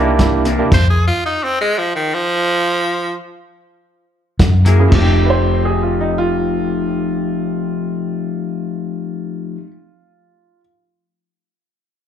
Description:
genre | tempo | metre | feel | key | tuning
straight-eighth soul blues | 114 BPM | 4/4 | straight | F mixolydian | A4 = 439 Hz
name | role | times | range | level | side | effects
warm upright piano | second line | 0.0-0.5, 5.3-10.6 s | Eb4 to C5 | -22 LUFS | right 3 dB | plate reverb, slapback echo
overdriven tine electric piano | accompaniment | 0.0-0.7, 4.8-9.6 s | A3 to Ab4 | -21 LUFS | right 4 dB | plate reverb, slapback echo
electric guitar through a small old amp | stabs | 0.0-0.6, 4.7-9.7 s | C3 to Ab4 | -20 LUFS | left 7 dB | slapback echo
vintage muted fingered electric bass | bass | 0.0-1.1, 4.4-9.6 s | F1 to Gb2 | -15 LUFS | equal | none
warm soul drum kit | drums | 0.2-0.8, 4.4-5.0 s | crash cymbal, hi-hat, kick drum, snare drum | -16 LUFS | equal | none
raspy tenor saxophone | melody | 0.7-3.1 s | Eb3 to C5 | -16 LUFS | equal | plate reverb, slapback echo
room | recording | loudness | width
light reverb | live gig heard through the venue's PA, club reverb | -14 LUFS | side -9 dB against mid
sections
0.0-4.9 A section; 4.9-9.1 B section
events
stop 0.7-4.4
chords
0.0 C9; 0.7 N.C.; 4.4 Gb9; 4.9 F9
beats
0.19 | 0.72 1.24 1.77 2.29 | 2.82 3.34 3.87 4.39 | 4.92 5.44 5.97 6.49 | 7.02 7.54 8.07 8.60

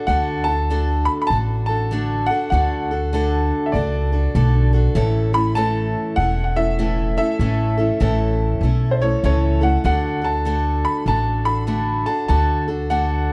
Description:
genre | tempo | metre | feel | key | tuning
honky-tonk and classic country | 98 BPM | 4/4 | swing 63% on 8ths | D major | A4 = 440 Hz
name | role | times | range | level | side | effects
picked steel-string acoustic guitar | accompaniment | 0.0-13.3 s | A2 to A4 | -25 LUFS | equal | none
bright upright piano | melody | 0.1-13.3 s | C5 to B5 | -26 LUFS | equal | none
upright bass | bass | 0.1-13.3 s | E1 to D2 | -22 LUFS | equal | none
room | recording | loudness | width
light reverb | dark, warm production | -20 LUFS | mono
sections
0.1-13.3 A section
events
none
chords
0.1 D; 5.0 A; 9.8 D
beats
| 0.08 0.69 1.30 1.91 | 2.52 3.13 3.74 4.35 | 4.96 5.57 6.18 6.79 | 7.40 8.01 8.62 9.23 | 9.84 10.46 11.07 11.68 | 12.29 12.90

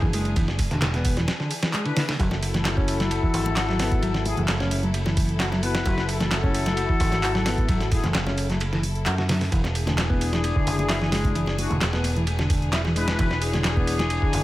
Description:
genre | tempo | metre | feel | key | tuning
breakbeat, breaks | 131 BPM | 4/4 | straight | F# minor | A4 = 441 Hz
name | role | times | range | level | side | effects
bright studio string section | sustained chords | 0.0-14.4 s | E3 to C#5 | -34 LUFS | left 2 dB | vintage 12-bit sampler grit, sidechain pumping
mellow electric guitar | riff | 0.0-14.4 s | D3 to F#4 | -28 LUFS | equal | tape echo
dark brass ensemble | stabs | 0.0-14.4 s | D4 to B4 | -28 LUFS | left 4 dB | tape echo
picked electric bass | bass | 0.0-14.4 s | E1 to F#2 | -26 LUFS | right 1 dB | none
dusty soul sampler-style drum kit | drums | 0.0-14.4 s | kick drum, ride cymbal, snare drum | -26 LUFS | equal | small room ambience
punchy analog drum machine | drums | 0.1-14.4 s | handclaps, hi-hat | -32 LUFS | right 1 dB | small room ambience
congas | percussion | 2.3-14.1 s | none | -36 LUFS | left 3 dB | none
room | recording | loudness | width
little or no reverb | none | -21 LUFS | side -16 dB against mid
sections
0.0-14.4 A section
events
none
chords
0.0 E7; 2.2 F#m7; 9.5 E7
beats
| 0.36 0.82 1.28 1.74 | 2.19 2.65 3.11 3.57 | 4.03 4.48 4.94 5.40 | 5.86 6.32 6.78 7.23 | 7.69 8.15 8.61 9.06 | 9.52 9.98 10.44 10.90 | 11.36 11.81 12.27 12.73 | 13.19 13.64 14.10

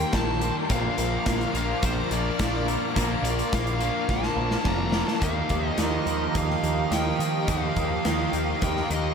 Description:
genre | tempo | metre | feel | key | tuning
rock, shoegaze and dream pop | 106 BPM | 4/4 | straight | unclear | A4 = 440 Hz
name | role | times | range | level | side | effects
fuzz lead guitar | melody | 0.0-9.1 s | C5 to Bb5 | -32 LUFS | equal | distortion, diffuse ambient delay
soft additive organ-like pad | sustained chords | 0.0-9.1 s | G4 to Eb6 | -31 LUFS | equal | ensemble chorus, built-in reverb
crunchy overdriven guitar | riff | 0.0-9.1 s | Bb2 to Eb4 | -32 LUFS | equal | none
raw garage guitar | riff | 0.0-9.1 s | Bb2 to Bb4 | -32 LUFS | left 6 dB | overdrive, wide subtle chorus
twangy electric guitar | riff | 0.0-9.1 s | Bb2 to A4 | -33 LUFS | right 9 dB | reverse reverb
growling picked electric bass | bass | 0.0-9.1 s | F1 to Eb3 | -29 LUFS | equal | overdrive
big rock drum kit | drums | 0.0-9.0 s | hi-hat, kick drum, snare drum | -29 LUFS | equal | none
room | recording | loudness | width
moderate huge ambient reverb, RT60 8.3 s | dreamy mix soaked in reverb | -23 LUFS | side -6 dB against mid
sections
0.0-5.2 A section; 5.2-9.1 B section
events
drum fill 4.1-5.2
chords
0.0 Ebmaj7; 0.7 Bbmaj7; 5.2 Ebadd9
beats
0.14 | 0.70 1.27 1.83 2.40 | 2.96 3.52 4.09 4.66 | 5.22 5.79 6.36 6.92 | 7.49 8.06 8.63

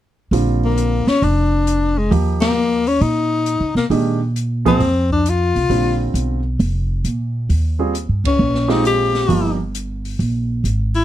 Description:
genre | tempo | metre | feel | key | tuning
jazz, small-group swing and bop | 134 BPM | 4/4 | swing 67% on 8ths | Bb mixolydian | A4 = 444 Hz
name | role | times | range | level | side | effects
warm grand piano | accompaniment | 0.3-9.6 s | D3 to Ab4 | -20 LUFS | right 4 dB | none
upright bass | bass | 0.3-11.0 s | F1 to Db3 | -18 LUFS | right 1 dB | none
open jazz drum kit | drums | 0.3-11.0 s | hi-hat, kick drum, ride cymbal, snare drum | -27 LUFS | equal | none
warm tenor saxophone | melody | 0.6-11.0 s | Ab3 to G4 | -17 LUFS | left 4 dB | none
room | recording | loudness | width
little or no reverb | dark, warm production | -15 LUFS | side -12 dB against mid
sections
0.3-11.0 A section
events
band accent 2.3, 8.2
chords
0.3 Bb; 2.1 Eb; 3.9 Bb; 7.5 Eb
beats
| 0.32 0.77 1.22 1.67 | 2.11 2.56 3.01 3.46 | 3.91 4.36 4.80 5.25 | 5.70 6.15 6.60 7.05 | 7.50 7.95 8.39 8.84 | 9.29 9.74 10.19 10.64

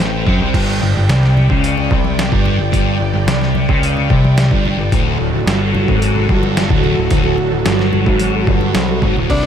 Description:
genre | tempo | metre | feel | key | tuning
psychedelic rock | 110 BPM | 4/4 | straight | D mixolydian | A4 = 440 Hz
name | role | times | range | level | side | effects
string machine, violas | sustained chords | 0.0-9.5 s | F#3 to G5 | -21 LUFS | right 3 dB | ensemble chorus
thick fuzz guitar | riff | 0.0-9.5 s | D2 to C4 | -16 LUFS | left 1 dB | distortion, phaser
overdriven picked electric bass | bass | 0.0-9.5 s | D1 to F#2 | -18 LUFS | equal | none
boom bap sampler-style drum kit | drums | 0.3-9.5 s | crash cymbal, hi-hat, kick drum, snare drum, toms | -18 LUFS | equal | overdrive
congas | percussion | 1.4-9.3 s | none | -28 LUFS | left 3 dB | none
combo organ | melody | 9.3-9.5 s | D4 | -16 LUFS | left 2 dB | none
room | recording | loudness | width
light reverb | none | -12 LUFS | side -8 dB against mid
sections
0.0-9.3 A section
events
drum fill 8.9-9.3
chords
0.0 C5; 0.5 G5; 4.9 D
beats
0.00 | 0.55 1.09 1.64 2.19 | 2.74 3.28 3.83 4.38 | 4.92 5.47 6.02 6.57 | 7.11 7.66 8.21 8.76 | 9.30

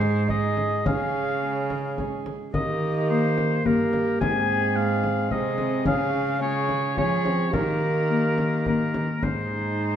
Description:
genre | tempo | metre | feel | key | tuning
classical, renaissance-style consort dance | 108 BPM | 3/4 | straight | unclear | A4 = 440 Hz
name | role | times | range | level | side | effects
clear oboe | melody | 0.0-10.0 s | Bb4 to Ab5 | -28 LUFS | left 2 dB | none
dark viola | second line | 0.0-10.0 s | Eb4 to Ab4 | -30 LUFS | right 5 dB | none
Celtic harp | accompaniment | 0.0-10.0 s | G2 to Ab4 | -30 LUFS | left 3 dB | none
dark bassoon | accompaniment | 0.0-10.0 s | Ab3 to Eb4 | -29 LUFS | right 1 dB | none
rich cello | bass | 0.0-10.0 s | G2 to F3 | -28 LUFS | right 1 dB | none
frame drum | percussion | 0.0-9.5 s | none | -31 LUFS | left 1 dB | none
room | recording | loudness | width
wet stone room reverb, RT60 1.3 s | heard from further back in the room | -22 LUFS | side -9 dB against mid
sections
0.0-9.2 A section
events
none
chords
0.0 Ab; 0.9 Db; 2.5 Eb; 4.2 Ab; 5.9 Db; 7.5 Eb; 9.2 Ab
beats
0.29 | 0.85 1.42 1.98 | 2.54 3.10 3.65 | 4.21 4.76 5.31 | 5.87 6.42 6.98 | 7.54 8.10 8.67 | 9.23 9.78

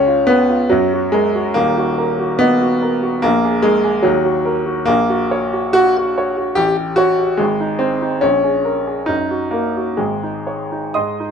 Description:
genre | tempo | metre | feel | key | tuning
classical, romantic character piece for solo piano | 60-74 BPM | 2/4 | rubato | unclear | A4 = 440 Hz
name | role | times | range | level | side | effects
clear grand piano | solo | 0.0-11.3 s | D#1 to Eb6 | -14 LUFS | equal | none
room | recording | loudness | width
light reverb | minimal, uncompressed stereo recording | -14 LUFS | side -7 dB against mid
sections
0.0-11.3 A section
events
none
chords
0.0 C#7; 0.7 F#; 1.5 D#m; 3.2 G#sus2/A#; 4.1 D#m; 4.9 Gb/Bb; 6.6 A7; 7.4 Ab; 8.2 Bbm7; 9.1 Ebm/Gb; 10.0 Absus4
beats
0.69 | 1.54 2.39 | 3.24 4.05 | 4.88 5.76 | 6.59 7.41 | 8.23 9.09 | 9.98 10.95

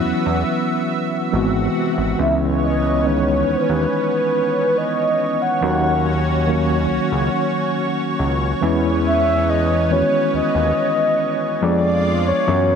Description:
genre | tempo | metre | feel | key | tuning
contemporary R&B | 70 BPM | 4/4 | straight | C# dorian | A4 = 440 Hz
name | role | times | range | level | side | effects
mellow tine electric piano | accompaniment | 0.0-12.8 s | D#3 to Ab4 | -21 LUFS | equal | fast stereo tremolo
lush unison pad | sustained chords | 0.0-12.8 s | B#2 to E5 | -23 LUFS | equal | chorus
fat analog bass | bass | 0.0-12.8 s | G#1 to F#2 | -21 LUFS | equal | none
mellow horn-like synth lead | melody | 2.2-12.8 s | B4 to F#5 | -20 LUFS | equal | chorus, ping-pong delay
room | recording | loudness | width
light reverb, digital ambience | none | -16 LUFS | side -7 dB against mid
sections
0.0-12.8 A section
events
none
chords
0.0 F#7sus4; 1.3 G#7alt; 2.2 C#m9; 5.6 D#m7; 8.6 C#m9/E; 11.6 Fdim7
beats
0.48 1.33 | 2.19 3.05 3.91 4.76 | 5.62 6.48 7.33 8.19 | 9.05 9.91 10.76 11.62 | 12.48

